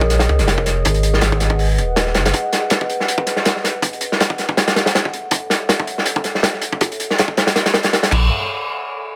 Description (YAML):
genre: drum and bass, jungle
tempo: 161 BPM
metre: 4/4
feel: swing 54% on 16ths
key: unclear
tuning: A4 = 440 Hz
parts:
  - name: warbly tape-like pad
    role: sustained chords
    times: 0.0-8.3 s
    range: Ab4 to Ab5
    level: -27 LUFS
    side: equal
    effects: chorus, built-in reverb, vintage 12-bit sampler grit
  - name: soft dub sub bass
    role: bass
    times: 0.0-2.3, 8.1-8.3 s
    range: Eb1 to Db2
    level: -19 LUFS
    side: equal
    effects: none
  - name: crunchy breakbeat drum kit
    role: drums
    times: 0.0-8.2 s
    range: crash cymbal, hi-hat, kick drum, snare drum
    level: -19 LUFS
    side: equal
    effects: high-pass filter on kick, high-pass filter on hats, high-pass filter on cymbals, high-pass filter on snare, high-pass filter on room
room: light reverb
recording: none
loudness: -18 LUFS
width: mono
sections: 0.0-8.3 A section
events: filter sweep on ambient pad 0.0-8.3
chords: 0.0 Bbm7; 0.8 Abm7; 4.6 Gbm7; 8.1 Bbm7; 8.3 N.C.